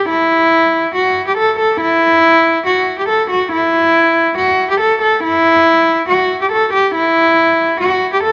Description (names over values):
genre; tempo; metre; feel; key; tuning
hip hop; 140 BPM; 4/4; half-time; unclear; A4 = 440 Hz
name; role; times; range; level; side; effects
warm cello; solo; 0.0-8.3 s; E4 to A4; -13 LUFS; equal; low-pass filter, tape echo
room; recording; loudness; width
light reverb; none; -13 LUFS; mono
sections
0.0-6.9 A section; 6.9-8.3 A section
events
none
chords
none